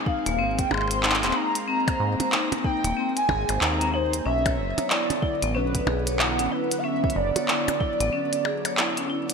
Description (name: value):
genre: IDM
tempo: 93 BPM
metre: 4/4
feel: swing 62% on 16ths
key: unclear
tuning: A4 = 439 Hz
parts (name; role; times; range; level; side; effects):
- warbly tape-like pad; sustained chords; 0.0-9.3 s; D3 to B#3; -31 LUFS; right 1 dB; chorus, built-in reverb, shimmer reverb
- warbly nostalgic lead; melody; 0.1-9.1 s; B4 to B#5; -27 LUFS; right 1 dB; analog chorus, digital delay, shimmer reverb
- vibraphone with hard mallets; arpeggios; 0.1-9.2 s; A#3 to C#5; -30 LUFS; left 3 dB; ping-pong delay, shimmer reverb
- electronic kick drum; drums; 0.1-8.0 s; none; -27 LUFS; equal; overdrive, studio reverb
- deep acid bass; bass; 0.3-8.1 s; D#1 to G#2; -28 LUFS; equal; tube saturation
- glitchy drum kit; drums; 0.3-9.3 s; handclaps, hi-hat, percussion blips; -26 LUFS; right 1 dB; overdrive, studio reverb, gated reverb
room: moderate plate reverb, RT60 3.6 s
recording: bright 1980s-style digital production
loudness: -22 LUFS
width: side -5 dB against mid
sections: 0.0-9.3 A section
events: kick drops out 8.1-9.3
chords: 0.0 G#add9; 4.3 Bm